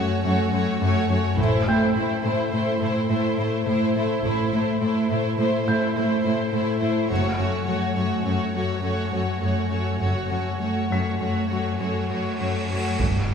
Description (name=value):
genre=cinematic, suspense film score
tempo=104 BPM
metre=5/4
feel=straight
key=unclear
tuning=A4 = 442 Hz
part: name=rich studio violin section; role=melody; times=0.0-13.0 s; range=C5 to C#5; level=-30 LUFS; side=left 3 dB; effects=none
part: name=warm studio violin section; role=second line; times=0.0-13.0 s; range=E4 to F#4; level=-29 LUFS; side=equal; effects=none
part: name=clear studio viola section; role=accompaniment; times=0.0-13.0 s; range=A3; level=-27 LUFS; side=right 2 dB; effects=none
part: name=concert harp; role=riff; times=0.0-13.3 s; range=F#2 to A3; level=-26 LUFS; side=left 3 dB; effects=none
part: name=rich studio cello section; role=bass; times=0.0-13.3 s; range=F#2 to A2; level=-29 LUFS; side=right 3 dB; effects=none
part: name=felt-muted upright piano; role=texture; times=0.0-13.0 s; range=G5 to B6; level=-34 LUFS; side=right 1 dB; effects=none
part: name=dark studio double bass section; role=bass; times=1.4-13.3 s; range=F#1 to A1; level=-30 LUFS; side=right 3 dB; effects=none
part: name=cymbal swell and impact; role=sound effects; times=12.1-13.3 s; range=none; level=-32 LUFS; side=right 2 dB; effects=none
part: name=taiko ensemble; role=drums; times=13.0-13.3 s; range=none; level=-28 LUFS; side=right 1 dB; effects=none
room=wet scoring stage reverb, RT60 1.6 s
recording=heard from further back in the room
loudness=-21 LUFS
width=side -7 dB against mid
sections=0.0-13.0 A section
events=cymbal swell 12.1-13.0; impact 13.0-13.3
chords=0.0 F#m; 1.4 Am; 7.1 F#m